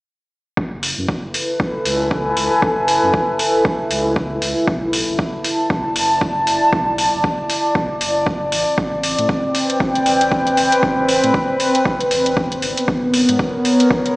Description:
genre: deep house.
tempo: 117 BPM.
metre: 4/4.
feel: swing 59% on 16ths.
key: F# minor.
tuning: A4 = 442 Hz.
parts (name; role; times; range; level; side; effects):
sub bass with octave; bass; 0.6-14.0 s; E1 to A2; -29 LUFS; equal; sidechain pumping.
electronic kick drum; drums; 0.6-14.0 s; none; -22 LUFS; equal; overdrive.
warbly tape-like pad; texture; 1.1-14.2 s; B3 to A5; -17 LUFS; equal; chorus, built-in reverb, sidechain pumping.
electronic hi-hat; drums; 0.8-14.1 s; none; -22 LUFS; equal; overdrive.
room: wet echo chamber reverb, RT60 1.6 s.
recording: played on a big sound system in a bare room, stone room reverb, small speaker sound.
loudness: -15 LUFS.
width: side -21 dB against mid.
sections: 0.6-14.2 A section.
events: none.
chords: 0.6 F#m11; 4.7 Bm7; 8.5 Am11; 12.6 G#madd9.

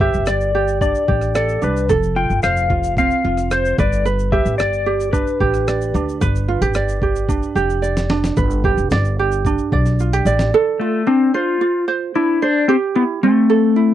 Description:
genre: acoustic pop.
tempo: 111 BPM.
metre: 4/4.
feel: straight.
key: unclear.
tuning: A4 = 442 Hz.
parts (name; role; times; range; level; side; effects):
clean lap steel guitar; melody; 0.0-13.9 s; A3 to G5; -18 LUFS; left 5 dB; none.
ukulele; accompaniment; 0.0-13.9 s; C4 to D5; -19 LUFS; right 6 dB; none.
upright bass; bass; 0.0-10.5 s; F1 to D2; -20 LUFS; equal; none.
dusty soul sampler-style drum kit; drums; 0.0-10.5 s; kick drum, rim click, shaker, snare drum; -22 LUFS; equal; none.
room: little or no reverb.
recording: dry, close 1970s-style studio recording.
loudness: -15 LUFS.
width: side -12 dB against mid.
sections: 0.0-8.4 A section; 8.4-10.5 B section; 10.5-13.9 C section.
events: drum fill 7.3-8.4, 10.0-10.5.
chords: 0.0 G; 1.9 F; 3.8 G; 10.5 Dm7; 12.7 Am7.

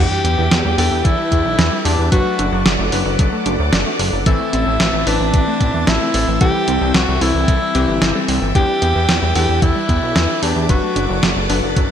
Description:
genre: synthwave.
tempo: 112 BPM.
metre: 4/4.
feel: straight.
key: unclear.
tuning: A4 = 440 Hz.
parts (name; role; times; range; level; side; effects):
bright tenor saxophone; melody; 0.0-11.2 s; D4 to G4; -21 LUFS; equal; digital delay.
FM electric piano with soft pad layer; second line; 0.0-11.2 s; D4 to G4; -27 LUFS; left 1 dB; none.
string machine, full ensemble; sustained chords; 0.0-11.9 s; C4 to E6; -24 LUFS; equal; ensemble chorus, sidechain pumping.
analog pluck; arpeggios; 0.0-11.9 s; E3 to D4; -26 LUFS; right 4 dB; chorus, digital delay.
clear electric grand piano; stabs; 0.0-11.9 s; E3 to B4; -23 LUFS; left 6 dB; none.
chorused synth bass; bass; 0.0-11.9 s; F#1 to E2; -19 LUFS; equal; tube saturation.
clean 12-bit digital drum machine; drums; 0.2-11.9 s; hi-hat, snare drum; -20 LUFS; right 1 dB; gated reverb.
electronic kick drum; drums; 1.0-11.9 s; none; -16 LUFS; equal; none.
room: light reverb.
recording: bright 1980s-style digital production.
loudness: -14 LUFS.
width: side -9 dB against mid.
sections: 0.0-11.9 A section.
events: none.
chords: 0.0 Em7; 2.1 D/F#; 4.3 Am; 6.4 C; 8.6 Em7; 10.7 D/F#.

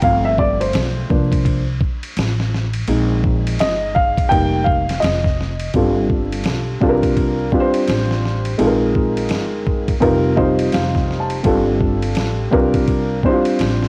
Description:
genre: hip hop, jazz-hop.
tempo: 84 BPM.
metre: 4/4.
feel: swing 61% on 16ths.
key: unclear.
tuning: A4 = 440 Hz.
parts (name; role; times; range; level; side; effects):
dark upright piano; accompaniment; 0.0-13.9 s; F3 to A5; -20 LUFS; equal; none.
upright bass; bass; 0.0-13.9 s; F1 to C2; -24 LUFS; equal; transformer saturation.
dusty soul sampler-style drum kit; drums; 0.0-13.9 s; hi-hat, kick drum, ride cymbal, snare drum; -24 LUFS; equal; cassette tape.
room: light reverb, small room reverb.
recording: home recording on cassette, vinyl crackle.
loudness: -18 LUFS.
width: mono.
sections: 0.0-5.7 A section; 5.7-13.9 B section.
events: upright piano solo 0.0-5.7; upright piano fill 10.0-11.5.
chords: 0.0 G9sus4; 1.1 C9sus4; 2.9 Bb9sus4; 4.3 F9sus4; 5.7 G9sus4; 6.8 C9sus4; 8.6 Bb9sus4; 10.0 F9sus4; 11.5 G9sus4; 12.5 C9sus4.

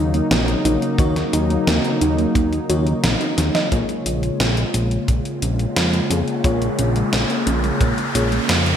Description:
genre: synthwave.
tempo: 88 BPM.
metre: 4/4.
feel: straight.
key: Bb minor.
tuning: A4 = 440 Hz.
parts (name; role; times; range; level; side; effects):
warm analog pad; sustained chords; 0.0-8.8 s; Db3 to F4; -23 LUFS; equal; chorus, sidechain pumping.
warbly dusty pluck; arpeggios; 0.0-8.6 s; Ab3 to Eb5; -27 LUFS; right 2 dB; none.
FM electric piano with soft pad layer; stabs; 0.0-8.3 s; Bb3 to Db5; -26 LUFS; left 3 dB; chorus, low-pass filter, digital delay.
fat analog bass; bass; 0.0-8.7 s; Bb1 to Bb2; -21 LUFS; equal; sidechain pumping.
gated 80s digital drum machine; drums; 0.1-8.8 s; hi-hat, snare drum; -22 LUFS; equal; gated reverb, gated reverb snare, overdrive, high-pass filter on hats, high-pass filter on snare, high-pass filter on room.
kick drum; drums; 1.0-7.9 s; none; -20 LUFS; equal; none.
riser; sound effects; 5.4-8.8 s; none; -27 LUFS; equal; none.
room: moderate lush hall reverb, RT60 2.3 s.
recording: bright 1980s-style digital production.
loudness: -17 LUFS.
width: side -9 dB against mid.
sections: 0.0-3.7 A section; 3.7-8.8 B section.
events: filter sweep on synth arpeggio sound 0.0-3.7; drum fill 3.4-3.7; filter sweep on analog synth pad 3.7-8.8; filter sweep on FM electric piano 3.7-8.8; riser 5.4-8.8.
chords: 0.0 Ebm7; 3.7 Bbm7.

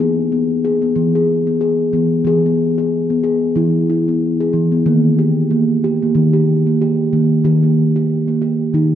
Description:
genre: world meditative, meditative tuned percussion.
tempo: 92 BPM.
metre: 4/4.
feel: swing 55% on 16ths.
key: unclear.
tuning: A4 = 440 Hz.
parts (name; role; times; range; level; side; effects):
steel tongue drum; solo; 0.0-8.9 s; Eb3 to G#4; -13 LUFS; equal; none.
room: wet church reverb, RT60 2.5 s.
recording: dark, warm production, nothing above 7.9 kHz.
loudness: -13 LUFS.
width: side -10 dB against mid.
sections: 0.0-8.9 A section.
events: none.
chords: 0.0 E; 4.9 Eb.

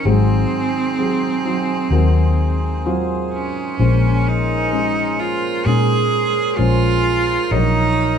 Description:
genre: acoustic folk-pop ballad.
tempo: 64 BPM.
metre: 4/4.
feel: straight.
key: Bb minor.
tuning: A4 = 441 Hz.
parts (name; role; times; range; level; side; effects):
bright cello; melody; 0.0-8.2 s; C4 to Ab4; -20 LUFS; right 4 dB; none.
felt-muted upright piano; accompaniment; 0.0-8.2 s; Ab1 to Db5; -22 LUFS; left 2 dB; none.
pedal harmonium; sustained chords; 0.0-8.2 s; Db4 to Bb5; -27 LUFS; right 2 dB; none.
vintage muted fingered electric bass; bass; 0.1-8.2 s; Ab1 to Bb2; -18 LUFS; left 1 dB; none.
room: moderate large studio reverb, RT60 0.8 s.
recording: band playing live in one room.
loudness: -15 LUFS.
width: side -7 dB against mid.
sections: 0.0-3.8 A section; 3.8-8.2 B section.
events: none.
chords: 0.1 Ab7; 3.8 Bbm9; 7.5 Ebm7/Bb.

